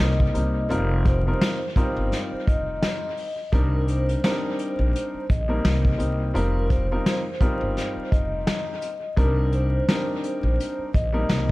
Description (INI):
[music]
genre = hip hop, boom-bap hip-hop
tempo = 85 BPM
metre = 4/4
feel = swing 57% on 16ths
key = C minor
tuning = A4 = 440 Hz
[part]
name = vibraphone with soft mallets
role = melody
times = 0.0-11.5 s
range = Bb4 to Eb5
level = -30 LUFS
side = equal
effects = high-pass filter, low-pass filter, analog delay
[part]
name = dark grand piano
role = accompaniment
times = 0.0-11.5 s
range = G3 to Bb4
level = -28 LUFS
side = left 1 dB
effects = high-pass filter, low-pass filter
[part]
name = upright bass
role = bass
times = 0.0-11.5 s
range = F1 to C2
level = -24 LUFS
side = equal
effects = none
[part]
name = vintage brush drum kit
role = drums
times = 0.0-11.5 s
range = hi-hat, kick drum, snare drum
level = -24 LUFS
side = equal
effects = vintage 12-bit sampler grit
[sound]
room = small room ambience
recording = echo-heavy mix, vinyl crackle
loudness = -21 LUFS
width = side -20 dB against mid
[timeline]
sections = 0.0-11.5 A section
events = none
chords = 0.0 Cm7; 0.7 F7sus4; 3.5 Cm7; 6.3 F7sus4; 9.2 Cm7